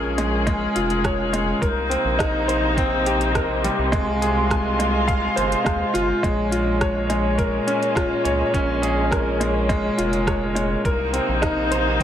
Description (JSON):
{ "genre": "piano and strings electronica", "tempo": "104 BPM", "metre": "4/4", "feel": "straight", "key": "Bb dorian", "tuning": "A4 = 441 Hz", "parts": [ { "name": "muted string quartet", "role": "sustained chords", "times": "0.0-12.0 s", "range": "Bb2 to Ab4", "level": "-24 LUFS", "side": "left 2 dB", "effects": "sidechain pumping" }, { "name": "bright upright piano", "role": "riff", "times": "0.0-12.0 s", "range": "G3 to Ab5", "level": "-22 LUFS", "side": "equal", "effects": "digital delay" }, { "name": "round analog bass", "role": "bass", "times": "0.0-12.0 s", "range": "F1 to Eb2", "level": "-26 LUFS", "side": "equal", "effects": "tube saturation, sidechain pumping" }, { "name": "deep house drum kit", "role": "drums", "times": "0.2-12.0 s", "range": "hi-hat, rim click", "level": "-29 LUFS", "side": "right 1 dB", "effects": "overdrive" }, { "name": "electronic kick drum", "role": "drums", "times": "0.5-12.0 s", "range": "none", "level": "-25 LUFS", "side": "equal", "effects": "none" } ], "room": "moderate echo chamber reverb, RT60 1.7 s", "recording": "none", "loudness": "-18 LUFS", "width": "side -10 dB against mid", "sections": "0.0-12.0 A section", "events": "none", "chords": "0.0 Bbm7; 1.6 Cm7; 3.9 Fm/C; 6.2 Bbm7; 10.8 Cm7", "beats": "0.47 1.04 | 1.62 2.20 2.77 3.35 | 3.93 4.50 5.08 5.66 | 6.23 6.81 7.39 7.96 | 8.54 9.12 9.70 10.27 | 10.85 11.43 12.00" }